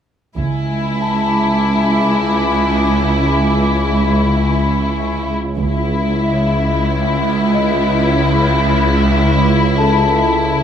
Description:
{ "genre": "cinematic, suspense film score", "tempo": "93 BPM", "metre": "4/4", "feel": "straight", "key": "C# minor", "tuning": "A4 = 441 Hz", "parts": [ { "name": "clear studio violin section", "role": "melody", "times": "0.4-10.6 s", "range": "E4", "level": "-18 LUFS", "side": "left 3 dB", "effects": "none" }, { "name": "rich studio cello section", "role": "bass", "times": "0.4-10.6 s", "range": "C#2", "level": "-18 LUFS", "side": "right 2 dB", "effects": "none" }, { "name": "rich studio double bass section", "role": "bass", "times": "0.4-1.0, 5.6-6.2 s", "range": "C#2", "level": "-22 LUFS", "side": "right 3 dB", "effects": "none" }, { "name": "bowed-like drone", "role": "drone", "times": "1.3-10.6 s", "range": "C#2", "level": "-18 LUFS", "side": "equal", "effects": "built-in reverb, phaser" }, { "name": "rich studio violin section", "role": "texture", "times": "0.4-5.2 s", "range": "G#5 to D6", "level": "-25 LUFS", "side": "left 2 dB", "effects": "none" }, { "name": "large celesta", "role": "texture", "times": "1.0-10.6 s", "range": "A4 to A5", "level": "-22 LUFS", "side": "left 4 dB", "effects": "none" } ], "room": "wet concert hall reverb, RT60 2.3 s", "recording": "none", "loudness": "-13 LUFS", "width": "side -8 dB against mid", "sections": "0.4-5.6 A section; 5.6-10.6 B section", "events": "none", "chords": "0.4 C#m", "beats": "| 0.38 1.03 1.68 2.33 | 2.97 3.61 4.26 4.92 | 5.59 6.24 6.88 7.54 | 8.18 8.82 9.46 10.09" }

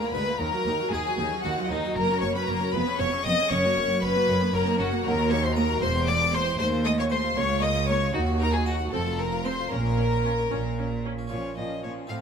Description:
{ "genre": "classical, baroque-style concerto movement with solo episodes", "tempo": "77 BPM (dotted quarters)", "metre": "6/8", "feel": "straight", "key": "Bb minor from 5.1 s", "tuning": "A4 = 440 Hz", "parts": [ { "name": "rich chamber violin section", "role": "melody", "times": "0.0-12.2 s", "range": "F4 to Eb6", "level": "-31 LUFS", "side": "left 4 dB", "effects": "none" }, { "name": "rich violin", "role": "melody", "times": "0.0-12.1 s", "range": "Eb4 to F5", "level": "-30 LUFS", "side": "left 3 dB", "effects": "none" }, { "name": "rich studio violin section", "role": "second line", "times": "0.0-12.2 s", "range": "C4 to Eb5", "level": "-30 LUFS", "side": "left 2 dB", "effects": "none" }, { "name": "harpsichord", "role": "accompaniment", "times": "0.0-12.2 s", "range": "Db2 to Eb5", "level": "-33 LUFS", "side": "equal", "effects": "none" }, { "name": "rich chamber viola section", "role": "accompaniment", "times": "0.0-12.2 s", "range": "Eb3 to Eb4", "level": "-33 LUFS", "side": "right 4 dB", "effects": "none" }, { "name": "rich chamber double bass section", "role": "bass", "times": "0.1-11.2 s", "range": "E1 to Eb2", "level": "-30 LUFS", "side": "right 3 dB", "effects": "none" }, { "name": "rich studio cello section", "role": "bass", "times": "0.1-12.2 s", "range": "Db2 to Bb2", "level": "-31 LUFS", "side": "right 2 dB", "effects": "none" } ], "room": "light reverb", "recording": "close, detailed microphones", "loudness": "-23 LUFS", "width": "side -7 dB against mid", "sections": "0.0-11.3 A section", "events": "none", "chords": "0.4 Ebm; 2.0 Gb; 2.7 Db7/F; 3.5 Gb; 5.1 Ebm; 5.8 C7/E; 6.6 F7/Eb; 7.4 Bbm/Db; 8.1 Ebm; 8.9 F5; 9.7 Bbm", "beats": "| 0.40 1.18 | 1.96 2.73 | 3.51 4.28 | 5.05 5.82 | 6.59 7.37 | 8.15 8.93 | 9.73 10.52 | 11.32 12.10" }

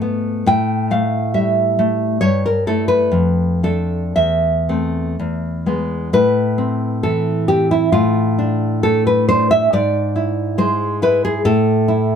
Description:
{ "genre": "romantic piece for solo classical guitar", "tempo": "55-70 BPM", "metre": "2/4", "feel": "rubato", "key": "A minor", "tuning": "A4 = 440 Hz", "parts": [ { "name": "nylon-string guitar", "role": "solo", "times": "0.0-12.2 s", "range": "E2 to G5", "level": "-14 LUFS", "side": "equal", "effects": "none" } ], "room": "light reverb", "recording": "none", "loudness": "-15 LUFS", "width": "side -7 dB against mid", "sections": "0.0-6.1 A section; 6.1-12.2 B section", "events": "none", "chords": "0.5 Fmaj9/A; 2.2 A5/G; 3.1 Dm/F; 4.2 Am/E; 5.2 E; 6.1 Am; 7.9 Dm/A; 9.7 E/G#; 11.4 A5", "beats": "| 0.47 1.35 | 2.22 3.13 | 4.18 5.19 | 6.14 7.04 | 7.92 8.82 | 9.71 10.57 | 11.44" }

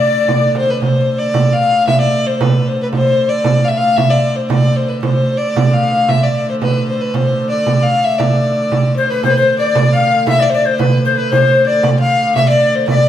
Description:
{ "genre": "medieval dance", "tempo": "114 BPM", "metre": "2/4", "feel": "straight", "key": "D dorian", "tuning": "A4 = 445 Hz", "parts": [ { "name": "dark fiddle", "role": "melody", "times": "0.0-13.1 s", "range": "B4 to F5", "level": "-15 LUFS", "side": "left 2 dB", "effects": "none" }, { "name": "breathy bright alto recorder", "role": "second line", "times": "0.0-0.5, 9.0-13.1 s", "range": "B4 to F5", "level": "-16 LUFS", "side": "left 4 dB", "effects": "none" }, { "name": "rich hurdy-gurdy", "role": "drone", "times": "0.0-13.1 s", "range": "D3 to A3", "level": "-22 LUFS", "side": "equal", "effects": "none" }, { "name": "frame drum", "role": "percussion", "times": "0.3-13.1 s", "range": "none", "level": "-16 LUFS", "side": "right 3 dB", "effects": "none" } ], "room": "wet stone room reverb, RT60 1.3 s", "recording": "band playing live in one room", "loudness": "-11 LUFS", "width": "side -11 dB against mid", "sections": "0.8-9.2 A section; 9.2-13.1 A section", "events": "none", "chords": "none", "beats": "0.29 | 0.82 1.35 | 1.88 2.41 | 2.94 3.46 | 3.99 4.52 | 5.04 5.57 | 6.09 6.62 | 7.14 7.67 | 8.19 8.71 | 9.23 9.75 | 10.27 10.79 | 11.31 11.83 | 12.35 12.87" }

